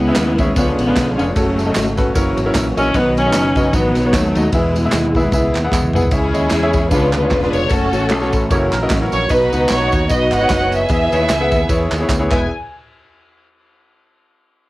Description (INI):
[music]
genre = uptempo gospel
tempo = 151 BPM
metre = 4/4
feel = swing 56% on 8ths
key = E major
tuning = A4 = 440 Hz
[part]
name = warm studio string section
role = melody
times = 0.0-12.5 s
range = B2 to G#5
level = -18 LUFS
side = equal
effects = none
[part]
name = clear concert grand piano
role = accompaniment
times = 0.0-12.5 s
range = E2 to F#5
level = -20 LUFS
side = left 1 dB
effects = cassette tape
[part]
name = tonewheel organ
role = sustained chords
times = 0.0-12.5 s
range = C#3 to B4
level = -25 LUFS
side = right 1 dB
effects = none
[part]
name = modern bright fingered electric bass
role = bass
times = 0.0-12.5 s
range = E1 to E2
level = -21 LUFS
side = equal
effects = none
[part]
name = natural country drum kit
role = drums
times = 0.0-12.4 s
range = crash cymbal, kick drum, ride cymbal, snare drum, toms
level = -21 LUFS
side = equal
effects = cassette tape
[part]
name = handclaps and tambourine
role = percussion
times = 0.2-12.5 s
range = none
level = -28 LUFS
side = right 3 dB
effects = none
[part]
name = electric guitar with an envelope filter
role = second line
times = 8.5-9.3 s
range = F#4 to C#5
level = -26 LUFS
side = right 3 dB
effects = cassette tape
[sound]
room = light reverb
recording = home recording on cassette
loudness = -13 LUFS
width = side -18 dB against mid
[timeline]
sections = 0.0-6.1 A section; 6.1-12.5 B section; 12.5-14.1 C section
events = drum fill 5.7-6.1, 12.1-12.5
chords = 0.0 C#m; 0.6 C#7b9; 1.4 F#m; 2.1 F#7; 2.9 B; 4.5 E; 6.1 C#m; 6.9 C#7b9; 7.7 F#m; 8.5 F#7; 9.3 B; 10.9 E; 12.5 N.C.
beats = 0.16 0.56 0.95 | 1.35 1.75 2.15 2.54 | 2.94 3.34 3.73 4.13 | 4.53 4.93 5.32 5.72 | 6.12 6.52 6.91 7.31 | 7.71 8.11 8.50 8.90 | 9.30 9.70 10.10 10.49 | 10.89 11.29 11.69 12.09